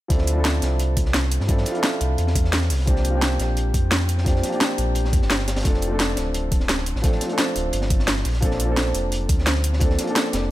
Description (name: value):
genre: liquid drum and bass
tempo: 173 BPM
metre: 4/4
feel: straight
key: D minor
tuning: A4 = 440 Hz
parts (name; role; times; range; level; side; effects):
- warm grand piano; accompaniment; 0.1-10.5 s; F3 to A4; -26 LUFS; equal; dub echo
- sub bass with octave; bass; 0.1-10.5 s; D1 to G2; -22 LUFS; equal; none
- crunchy breakbeat drum kit; drums; 0.1-10.4 s; hi-hat, snare drum; -30 LUFS; equal; high-pass filter on hats, high-pass filter on snare, high-pass filter on room
- drum and bass drum kit; drums; 0.1-10.4 s; hi-hat, snare drum; -24 LUFS; equal; overdrive
- electronic kick drum; drums; 0.1-9.9 s; none; -21 LUFS; equal; overdrive
room: studio reverb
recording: none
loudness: -19 LUFS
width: side -15 dB against mid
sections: 0.1-10.5 A section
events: none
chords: 0.1 Dm9; 2.7 C9sus4; 5.7 F6; 8.3 Bbmaj9